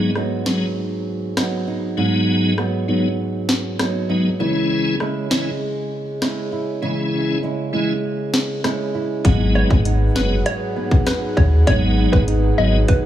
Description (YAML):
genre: dancehall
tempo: 99 BPM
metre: 4/4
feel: straight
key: G# minor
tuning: A4 = 440 Hz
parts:
  - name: tonewheel organ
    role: accompaniment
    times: 0.0-12.8 s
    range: E3 to E4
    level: -22 LUFS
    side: left 2 dB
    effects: chorus vibrato, slow rotary speaker
  - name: flamenco guitar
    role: arpeggios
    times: 0.0-13.1 s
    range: G#2 to E4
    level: -22 LUFS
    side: right 3 dB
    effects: tape echo
  - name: island pop drum kit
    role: drums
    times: 0.2-13.0 s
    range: hi-hat, kick drum, rim click, snare drum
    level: -19 LUFS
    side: left 1 dB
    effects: overdrive
  - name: airy breathy pad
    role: sustained chords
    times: 9.2-13.1 s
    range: D#4 to F#5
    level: -27 LUFS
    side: left 2 dB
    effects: chorus, sidechain pumping
  - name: warm sub bass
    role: bass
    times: 9.2-12.8 s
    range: F#1 to D#2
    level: -17 LUFS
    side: equal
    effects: none
  - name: hollow square pluck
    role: melody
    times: 9.6-13.0 s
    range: B4 to D#5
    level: -24 LUFS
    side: right 1 dB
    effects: chorus, tape echo
room: light reverb, digital ambience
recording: small room ambience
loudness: -17 LUFS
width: side -12 dB against mid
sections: 0.0-9.2 A section; 9.2-13.1 B section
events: none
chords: 0.0 G#m7; 4.4 C#m; 9.2 G#m7